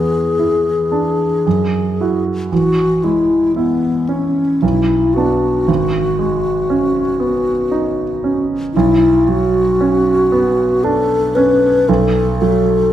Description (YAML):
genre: classical, impressionist duo for alto flute and grand piano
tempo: 57 BPM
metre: 3/4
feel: rubato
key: B minor from 8.7 s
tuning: A4 = 440 Hz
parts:
  - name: mellow wooden-headed alto flute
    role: melody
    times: 0.0-12.9 s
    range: B3 to B4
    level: -15 LUFS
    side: left 3 dB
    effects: none
  - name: clear concert grand piano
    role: accompaniment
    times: 0.0-12.9 s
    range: G#1 to F#4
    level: -16 LUFS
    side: right 4 dB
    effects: none
room: wet recital hall reverb, RT60 1.5 s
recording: none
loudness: -13 LUFS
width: side -11 dB against mid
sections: 0.0-12.9 A section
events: none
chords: 0.0 E7; 1.5 F#sus2; 2.5 Amaj7; 4.6 Bm; 5.7 G#m7; 8.7 Bmadd9; 11.9 F#m/B